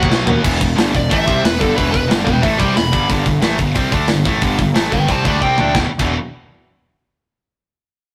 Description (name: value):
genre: heavy metal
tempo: 181 BPM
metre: 4/4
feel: straight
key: E minor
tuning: A4 = 440 Hz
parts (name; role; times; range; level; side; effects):
- high-gain lead guitar; melody; 0.0-5.7 s; A4 to B5; -21 LUFS; equal; distortion
- distorted electric guitar; riff; 0.0-6.1 s; E2 to D4; -24 LUFS; equal; overdrive
- heavy high-gain guitar; riff; 0.0-6.1 s; E2 to D4; -23 LUFS; equal; distortion
- fuzz picked electric bass; bass; 0.0-6.1 s; E1 to D#2; -22 LUFS; equal; overdrive
- tight metal drum kit; drums; 0.0-6.1 s; crash cymbal, hi-hat, kick drum, snare drum, toms; -21 LUFS; equal; none
room: light reverb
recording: rough rehearsal-room recording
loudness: -16 LUFS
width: mono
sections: 0.4-5.7 A section; 5.7-7.1 B section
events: drum fill 0.1-0.4, 5.4-5.7; lead electric guitar solo 0.4-5.7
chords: 0.4 Em; 3.1 G5; 5.7 E5